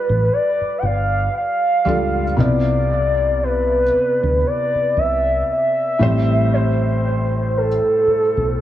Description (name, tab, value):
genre	contemporary R&B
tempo	58 BPM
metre	4/4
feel	swing 58% on 16ths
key	unclear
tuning	A4 = 440 Hz
part	gliding portamento lead	melody	0.0-8.6 s	A4 to G5	-18 LUFS	equal	chorus, dub echo
part	felt-muted upright piano	accompaniment	0.0-8.6 s	A2 to D5	-22 LUFS	left 1 dB	dub echo
part	deep dub fingered electric bass	bass	0.1-8.6 s	G1 to D2	-21 LUFS	equal	none
room	moderate plate reverb, RT60 2.8 s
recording	echo-heavy mix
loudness	-15 LUFS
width	side -12 dB against mid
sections	0.0-8.6 A section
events	none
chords	0.0 G9; 2.4 Cmaj9; 6.0 Am7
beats	0.31 1.34 | 2.38 3.41 4.45 5.48 | 6.51 7.55 8.58